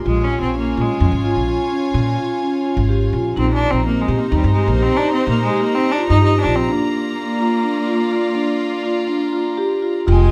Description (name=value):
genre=contemporary instrumental, chamber music in an uneven meter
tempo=126 BPM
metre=7/4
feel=straight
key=Bb mixolydian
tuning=A4 = 440 Hz
part: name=warm studio string section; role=sustained chords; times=0.0-10.3 s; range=Eb4 to Bb5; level=-28 LUFS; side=equal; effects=none
part: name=upright bass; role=bass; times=0.0-10.3 s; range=F1 to Bb2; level=-20 LUFS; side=equal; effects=none
part: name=rich cello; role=melody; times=0.1-10.3 s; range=G3 to Eb4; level=-24 LUFS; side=equal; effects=none
part: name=marimba with soft mallets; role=arpeggios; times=0.1-10.3 s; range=Bb3 to G4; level=-22 LUFS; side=equal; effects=none
room=little or no reverb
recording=close, detailed microphones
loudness=-18 LUFS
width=mono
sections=0.0-10.1 A section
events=break 6.7-10.1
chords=0.1 Db; 3.4 Cm7/Bb; 6.7 Bb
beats=| 0.06 0.53 1.01 1.48 1.95 2.42 2.90 | 3.37 3.84 4.32 4.79 5.27 5.74 6.22 | 6.69 7.17 7.64 8.12 8.60 9.09 9.58 | 10.07